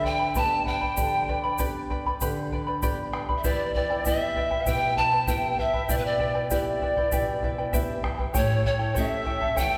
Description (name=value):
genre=andean folk, Andean ensemble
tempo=98 BPM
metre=4/4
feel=straight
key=E dorian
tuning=A4 = 440 Hz
part: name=breathy bright pan flute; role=melody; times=0.0-9.8 s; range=B4 to A5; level=-29 LUFS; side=equal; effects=none
part: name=mellow quena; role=second line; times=0.0-9.8 s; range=B4 to A5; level=-34 LUFS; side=equal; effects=none
part: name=charango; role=accompaniment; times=0.0-9.8 s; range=E4 to B5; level=-33 LUFS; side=equal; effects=none
part: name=nylon-string guitar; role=accompaniment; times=0.0-9.8 s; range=E2 to G4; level=-35 LUFS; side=equal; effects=none
part: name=bombo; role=percussion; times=0.0-9.7 s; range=none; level=-33 LUFS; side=equal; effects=none
part: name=egg shaker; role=percussion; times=0.3-9.7 s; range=none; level=-40 LUFS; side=equal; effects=none
room=wet concert hall reverb, RT60 2.3 s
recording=recorded in a church or concert hall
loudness=-26 LUFS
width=mono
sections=0.0-9.8 A section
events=none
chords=0.0 G; 3.4 Em; 8.3 A7